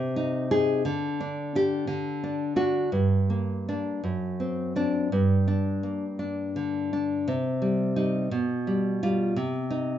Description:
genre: romantic piece for solo classical guitar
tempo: 56 BPM (dotted quarters)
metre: 6/8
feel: uneven beats, rubato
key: G minor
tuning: A4 = 438 Hz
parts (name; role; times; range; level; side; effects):
- nylon-string guitar; solo; 0.0-10.0 s; F#2 to Ab4; -24 LUFS; equal; none
room: moderate large studio reverb, RT60 1.1 s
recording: band playing live in one room, nothing above 7.9 kHz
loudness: -24 LUFS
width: side -10 dB against mid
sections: 0.0-2.9 A section; 2.9-10.0 B section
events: none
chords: 0.0 Ab/C; 0.9 Dsus4; 1.9 D; 2.9 Gm; 4.0 D7/F#; 5.1 Gm; 7.3 Cm; 8.3 G7/B; 9.4 Cm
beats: | 0.86 1.88 | 2.93 4.04 | 5.12 6.19 | 7.26 8.31 | 9.37

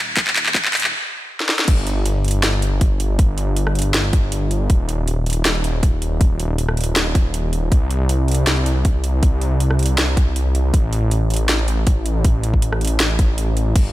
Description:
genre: future bass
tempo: 159 BPM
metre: 4/4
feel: swing 54% on 16ths, half-time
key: unclear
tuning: A4 = 440 Hz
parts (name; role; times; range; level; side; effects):
- wide detuned saw bass; bass; 0.0-13.9 s; Eb1 to C2; -19 LUFS; equal; chorus, sidechain pumping
- electronic kick drum; drums; 0.2-13.8 s; none; -16 LUFS; equal; none
- trap drum kit; drums; 0.2-13.8 s; crash cymbal, handclaps, hi-hat, rim click, snare drum; -21 LUFS; equal; none
room: little or no reverb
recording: high-pass filter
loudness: -16 LUFS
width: side -16 dB against mid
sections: 0.0-1.7 A section; 1.7-13.9 B section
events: build-up 0.0-1.7; drum fill 0.0-0.9, 1.4; stop 0.9-1.7; drop 1.7-13.9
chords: none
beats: | 0.17 0.55 0.93 1.30 | 1.68 2.06 2.43 2.81 | 3.19 3.57 3.94 4.32 | 4.70 5.08 5.45 5.83 | 6.21 6.58 6.96 7.34 | 7.72 8.09 8.47 8.85 | 9.23 9.60 9.98 10.36 | 10.74 11.11 11.49 11.87 | 12.24 12.62 13.00 13.38 | 13.76

